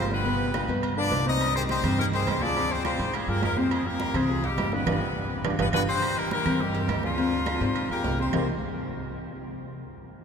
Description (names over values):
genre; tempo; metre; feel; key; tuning
latin, salsa; 208 BPM; 4/4; straight; C minor; A4 = 440 Hz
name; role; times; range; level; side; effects
brilliant horn section; melody; 0.0-8.5 s; F3 to Eb5; -29 LUFS; left 3 dB; none
warm upright piano; accompaniment; 0.0-8.5 s; B2 to C5; -30 LUFS; left 2 dB; none
upright bass; bass; 0.0-8.5 s; G1 to Ab2; -30 LUFS; right 1 dB; none
congas; percussion; 0.1-8.4 s; none; -34 LUFS; right 2 dB; none
agogo bells and timbales; percussion; 0.3-8.4 s; none; -34 LUFS; right 6 dB; none
claves; percussion; 0.5-8.4 s; none; -41 LUFS; right 5 dB; none
room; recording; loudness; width
wet cathedral reverb, RT60 6.0 s; recorded in a church or concert hall; -24 LUFS; side -6 dB against mid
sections
0.0-6.0 A section; 6.0-8.3 B section; 8.3-9.5 C section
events
drum fill 4.9-6.0; band accent 4.9-6.0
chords
0.3 G7; 1.4 Cm; 2.6 Dm7b5; 3.7 Fmadd9; 4.9 G7; 6.0 Cm7; 7.2 Dm7b5; 8.3 Cm7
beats
| 0.25 0.54 0.83 1.12 | 1.41 1.69 1.98 2.27 | 2.56 2.85 3.14 3.42 | 3.71 4.00 4.29 4.58 | 4.87 5.16 5.45 5.73 | 6.02 6.31 6.60 6.89 | 7.18 7.46 7.75 8.04 | 8.33